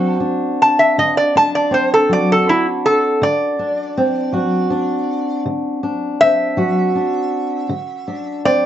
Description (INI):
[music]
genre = acoustic country blues, solo or duo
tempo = 53 BPM (dotted quarters)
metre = 12/8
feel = straight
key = unclear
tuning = A4 = 439 Hz
[part]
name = lap resonator guitar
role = melody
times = 0.0-8.7 s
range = E4 to A5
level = -14 LUFS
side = equal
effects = plate reverb
[part]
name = fingerpicked steel-string acoustic guitar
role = accompaniment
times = 0.0-8.7 s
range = D3 to F#4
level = -18 LUFS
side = equal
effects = none
[sound]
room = moderate studio ambience, RT60 0.5 s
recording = cassette tape, nothing above 7.7 kHz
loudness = -14 LUFS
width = side -11 dB against mid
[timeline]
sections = 0.0-8.7 A section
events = resonator guitar played with a steel bar solo 0.0-8.7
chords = 0.0 D7